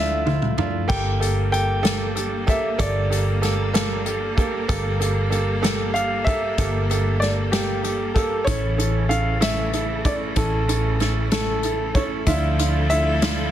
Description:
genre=six-eight pop ballad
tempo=63 BPM (dotted quarters)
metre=6/8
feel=straight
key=unclear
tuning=A4 = 439 Hz
part: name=warm grand piano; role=melody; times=0.0-13.5 s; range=G4 to G5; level=-26 LUFS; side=equal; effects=ping-pong delay
part: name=bright upright piano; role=accompaniment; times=0.0-13.5 s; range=Bb3 to A4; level=-26 LUFS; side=right 5 dB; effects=none
part: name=picked steel-string acoustic guitar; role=arpeggios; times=0.0-13.5 s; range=E3 to A4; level=-33 LUFS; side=left 8 dB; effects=none
part: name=vintage muted fingered electric bass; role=bass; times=0.0-13.5 s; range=G1 to D2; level=-24 LUFS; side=equal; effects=none
part: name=unplugged drum kit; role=drums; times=0.3-13.4 s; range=hi-hat, kick drum, snare drum, splash cymbal, toms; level=-25 LUFS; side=left 1 dB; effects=none
part: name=bright studio string section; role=sustained chords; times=0.9-13.5 s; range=C#3 to A4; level=-31 LUFS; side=left 1 dB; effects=none
room=light reverb, small room ambience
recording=dense, heavily limited modern master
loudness=-19 LUFS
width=side -11 dB against mid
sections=0.0-13.5 A section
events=drum fill 0.0-0.9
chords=0.0 Dmadd9; 0.9 Gmadd9; 8.5 A; 12.3 Dmadd9

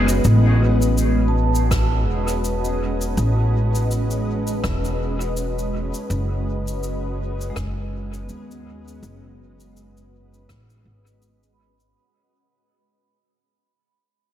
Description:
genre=ambient dub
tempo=82 BPM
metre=4/4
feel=swing 56% on 16ths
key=F# dorian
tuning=A4 = 440 Hz
part: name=granular cloud pad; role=sustained chords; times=0.0-12.0 s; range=G#3 to D#5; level=-26 LUFS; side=equal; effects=built-in reverb
part: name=vibraphone with medium hard mallets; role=arpeggios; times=0.0-12.8 s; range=G#3 to B5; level=-28 LUFS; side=equal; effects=low-pass filter, dub echo
part: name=upright bass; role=bass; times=0.0-11.9 s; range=E1 to D#2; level=-21 LUFS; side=equal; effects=none
part: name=cabasa and rim click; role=drums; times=0.1-11.9 s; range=none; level=-33 LUFS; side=left 1 dB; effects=dub echo
part: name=electronic kick drum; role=drums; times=1.7-10.7 s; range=none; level=-27 LUFS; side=equal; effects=none
room=little or no reverb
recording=echo-heavy mix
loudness=-19 LUFS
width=side -11 dB against mid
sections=0.2-12.0 A section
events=fade-out 0.2-12.0; filter sweep on vibraphone 0.2-12.0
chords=0.2 Amaj9#11; 6.1 F#sus2

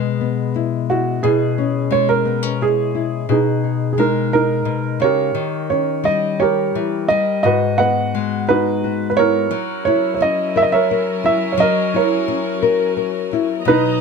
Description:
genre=acoustic folk-pop ballad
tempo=87 BPM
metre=3/4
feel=straight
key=unclear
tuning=A4 = 441 Hz
part: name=dark upright piano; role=melody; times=0.0-14.0 s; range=B3 to F#5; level=-17 LUFS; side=right 5 dB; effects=none
part: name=nylon-string guitar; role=accompaniment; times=0.0-14.0 s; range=G#2 to A#4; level=-20 LUFS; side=left 10 dB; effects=none
part: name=warm chamber string section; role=sustained chords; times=9.5-14.0 s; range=F#3 to A#5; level=-26 LUFS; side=left 2 dB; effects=none
room=little or no reverb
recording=close, detailed microphones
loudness=-15 LUFS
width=side -5 dB against mid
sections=0.0-5.4 A section; 5.4-13.6 B section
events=none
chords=0.0 E/B; 1.2 C#m/B; 3.3 G#sus2/B; 5.4 D#7; 7.4 G#m7; 9.5 F#7

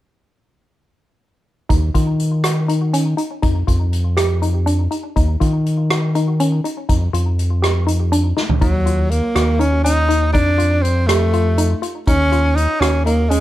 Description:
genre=progressive instrumental, band music in an uneven meter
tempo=243 BPM (eighths)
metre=7/8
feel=straight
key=Eb minor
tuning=A4 = 441 Hz
part: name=woody wave-folded pluck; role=arpeggios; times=1.7-13.4 s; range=Db4 to G4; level=-22 LUFS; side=equal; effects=chorus, digital delay
part: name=round analog bass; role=bass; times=1.7-13.4 s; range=Eb2 to Eb3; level=-17 LUFS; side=equal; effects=none
part: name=unplugged drum kit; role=drums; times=1.7-13.4 s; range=hi-hat, kick drum, rim click, snare drum, toms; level=-21 LUFS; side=equal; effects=none
part: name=clear tenor saxophone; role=melody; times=8.6-13.4 s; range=Gb3 to Eb4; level=-18 LUFS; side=equal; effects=plate reverb
room=light reverb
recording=none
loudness=-15 LUFS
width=side -14 dB against mid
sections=1.7-8.6 A section; 8.6-13.4 B section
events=drum fill 8.4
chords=1.7 N.C.; 3.4 Ebsus2/F; 5.2 N.C.; 6.9 Ebsus2/F; 8.6 Ebm; 10.3 F7; 12.1 Ebm7

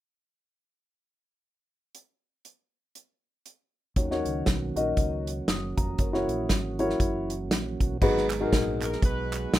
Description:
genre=uptempo gospel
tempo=119 BPM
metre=4/4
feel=swing 58% on 8ths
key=Eb minor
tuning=A4 = 439 Hz
part: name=natural country drum kit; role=drums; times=1.9-9.6 s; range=crash cymbal, hi-hat, kick drum, snare drum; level=-26 LUFS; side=equal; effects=none
part: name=dark concert grand piano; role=accompaniment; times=4.0-8.9 s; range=Ab2 to Eb6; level=-28 LUFS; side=left 2 dB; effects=none
part: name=mellow tonewheel organ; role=sustained chords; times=4.0-9.6 s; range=Eb3 to Ab4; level=-35 LUFS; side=right 4 dB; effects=slow rotary speaker
part: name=fingered electric bass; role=bass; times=4.0-9.6 s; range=F1 to Eb2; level=-34 LUFS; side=equal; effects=none
part: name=group handclap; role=percussion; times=8.3-9.4 s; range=none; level=-37 LUFS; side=right 6 dB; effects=none
part: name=warm horn section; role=melody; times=8.8-9.6 s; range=Cb4 to Cb5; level=-35 LUFS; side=equal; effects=none
room=light reverb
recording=rough home demo mix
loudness=-24 LUFS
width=side -14 dB against mid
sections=1.9-4.0 A section; 4.0-8.0 B section; 8.0-9.6 C section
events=none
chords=1.9 N.C.; 4.0 Ebm7; 6.0 Gb7; 8.0 Abm7

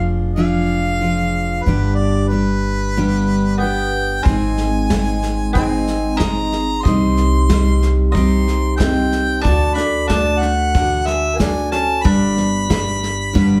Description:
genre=acoustic folk duo or small band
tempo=92 BPM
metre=4/4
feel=straight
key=C minor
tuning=A4 = 440 Hz
part: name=warm harmonica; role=melody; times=0.0-13.6 s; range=B4 to C6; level=-24 LUFS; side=equal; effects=none
part: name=picked steel-string acoustic guitar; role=accompaniment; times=0.0-13.6 s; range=G2 to B4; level=-22 LUFS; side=equal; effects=none
part: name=upright bass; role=bass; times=0.0-13.6 s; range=F1 to D2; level=-22 LUFS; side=equal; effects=none
part: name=mandolin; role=second line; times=3.6-13.6 s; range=Ab3 to Eb4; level=-27 LUFS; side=equal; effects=none
part: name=soft brush drum kit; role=drums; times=4.2-13.5 s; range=kick drum, snare drum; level=-23 LUFS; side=equal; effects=none
room=wet studio reverb, RT60 0.7 s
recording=heard from further back in the room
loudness=-17 LUFS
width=mono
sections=0.0-13.6 A section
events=none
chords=0.0 Ddim/F; 1.7 G; 4.3 Ab; 6.9 Cm; 9.4 D; 12.1 G

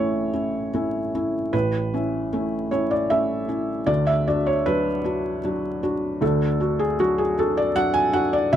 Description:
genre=neoclassical minimalist piano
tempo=77 BPM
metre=3/4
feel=rubato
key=unclear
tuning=A4 = 440 Hz
part: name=felt-muted upright piano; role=solo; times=0.0-8.6 s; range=A1 to G#5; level=-20 LUFS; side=equal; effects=none
room=light reverb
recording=vinyl crackle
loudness=-20 LUFS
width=side -10 dB against mid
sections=0.0-8.6 A section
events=none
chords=0.0 A; 3.9 D

